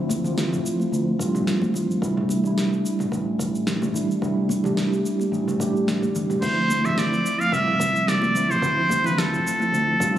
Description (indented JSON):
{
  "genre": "sunset chillout",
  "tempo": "109 BPM",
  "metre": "4/4",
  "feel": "swing 54% on 16ths",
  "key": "D minor",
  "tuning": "A4 = 440 Hz",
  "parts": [
    { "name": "mellow tine electric piano", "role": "accompaniment", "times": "0.0-10.2 s", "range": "F3 to G4", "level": "-24 LUFS", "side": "right 1 dB", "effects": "medium stereo tremolo, auto-pan, digital delay" },
    { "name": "fingered electric bass", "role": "bass", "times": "0.0-10.2 s", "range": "G1 to G2", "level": "-27 LUFS", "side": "equal", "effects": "none" },
    { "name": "deep house drum kit", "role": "drums", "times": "0.1-10.2 s", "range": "cabasa, crash cymbal, snare drum, toms", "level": "-30 LUFS", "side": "equal", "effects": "none" },
    { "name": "electronic kick drum", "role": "drums", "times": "0.1-10.1 s", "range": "none", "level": "-31 LUFS", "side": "right 1 dB", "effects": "none" },
    { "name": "congas", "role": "percussion", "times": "0.1-9.7 s", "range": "none", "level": "-30 LUFS", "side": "left 2 dB", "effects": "none" },
    { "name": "trumpet with straight mute", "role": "melody", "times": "6.4-10.2 s", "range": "A4 to F5", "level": "-21 LUFS", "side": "right 1 dB", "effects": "digital delay" }
  ],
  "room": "light reverb",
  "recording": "recorded on a phone in the room, club reverb, compression",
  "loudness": "-20 LUFS",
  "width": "side -11 dB against mid",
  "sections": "0.0-10.2 A section",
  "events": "none",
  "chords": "0.0 Dm7; 2.0 C69; 6.4 Dm7",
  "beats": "0.37 0.92 1.47 | 2.02 2.57 3.12 3.67 | 4.22 4.78 5.33 5.88 | 6.43 6.98 7.53 8.08 | 8.63 9.18 9.73"
}